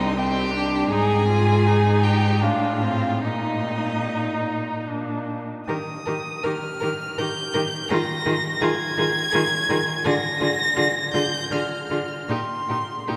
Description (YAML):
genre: classical, slow romantic movement for string quartet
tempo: 70-85 BPM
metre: 3/4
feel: rubato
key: Eb major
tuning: A4 = 440 Hz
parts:
  - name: warm violin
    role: melody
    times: 0.0-13.2 s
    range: Eb5 to Bb6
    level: -28 LUFS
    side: equal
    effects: none
  - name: warm violin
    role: second line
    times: 0.0-13.2 s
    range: Eb4 to Bb4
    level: -30 LUFS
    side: equal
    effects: none
  - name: warm viola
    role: accompaniment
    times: 0.0-13.2 s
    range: C4 to G4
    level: -31 LUFS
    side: equal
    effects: none
  - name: clear cello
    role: bass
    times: 0.0-13.2 s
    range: C2 to Eb3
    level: -27 LUFS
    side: equal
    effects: none
room: wet cathedral reverb, RT60 6.0 s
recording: recorded in a church or concert hall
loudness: -23 LUFS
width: mono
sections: 0.0-5.7 A section; 5.7-13.2 B section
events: none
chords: 0.0 Cm; 0.9 Fm7/Ab; 2.4 F/A; 3.2 Eb5/Bb; 4.9 Bb; 5.7 Eb; 7.9 Fm7/Eb; 10.1 Bb/D; 12.3 Eb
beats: 0.17 | 0.91 1.66 2.42 | 3.24 4.07 4.88 | 5.69 6.45 7.18 | 7.90 8.62 9.33 | 10.05 10.77 11.51 | 12.29 13.08